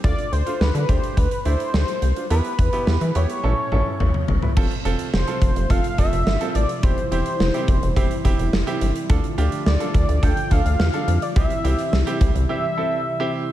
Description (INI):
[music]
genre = synth-pop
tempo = 106 BPM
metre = 4/4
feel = straight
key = D dorian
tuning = A4 = 440 Hz
[part]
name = octave-doubled lead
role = melody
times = 0.0-13.3 s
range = B4 to G5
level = -26 LUFS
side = left 1 dB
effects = chorus, tape echo
[part]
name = clear baby grand piano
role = accompaniment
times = 0.0-13.4 s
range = A3 to B4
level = -29 LUFS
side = right 5 dB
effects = none
[part]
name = rubbery square bass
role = bass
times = 0.0-12.5 s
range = E1 to E3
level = -20 LUFS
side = equal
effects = none
[part]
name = huge arena drum kit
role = drums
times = 0.0-12.5 s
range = crash cymbal, hi-hat, kick drum, snare drum, toms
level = -22 LUFS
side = equal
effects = gated reverb
[part]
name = warm analog pad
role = sustained chords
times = 4.6-13.5 s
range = C3 to F4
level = -29 LUFS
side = equal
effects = lush chorus
[sound]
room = light reverb, small room ambience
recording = none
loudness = -18 LUFS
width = side -13 dB against mid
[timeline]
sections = 0.0-4.6 A section; 4.6-13.5 B section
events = drum fill 3.4-4.6; break 12.5-13.5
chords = 0.0 Dm; 2.3 Em; 3.4 A; 4.6 F; 6.8 C/E; 9.1 Dm; 11.4 C